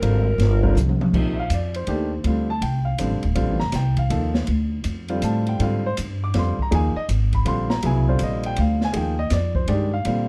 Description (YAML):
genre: modal jazz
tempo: 162 BPM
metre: 3/4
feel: swing 64% on 8ths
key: Bb mixolydian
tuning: A4 = 440 Hz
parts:
  - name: growling alto saxophone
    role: melody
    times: 0.0-0.8 s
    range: Bb4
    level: -30 LUFS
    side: equal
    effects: plate reverb
  - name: warm baby grand piano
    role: accompaniment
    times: 0.0-10.3 s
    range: C3 to D6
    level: -28 LUFS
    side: equal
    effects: none
  - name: upright bass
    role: bass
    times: 0.0-10.3 s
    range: D1 to Bb2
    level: -24 LUFS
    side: equal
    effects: none
  - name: open jazz drum kit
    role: drums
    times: 0.0-10.2 s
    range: crash cymbal, hi-hat, kick drum, ride cymbal, snare drum, toms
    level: -30 LUFS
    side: equal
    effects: none
room: light reverb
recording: dark, warm production, faint mains hum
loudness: -22 LUFS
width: mono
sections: 0.0-1.1 A section; 1.1-10.3 A section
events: alto saxophone solo 0.0-1.1; drum fill 0.8-1.1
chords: 0.0 Abmaj9; 1.1 Bbmaj9; 5.6 Abmaj9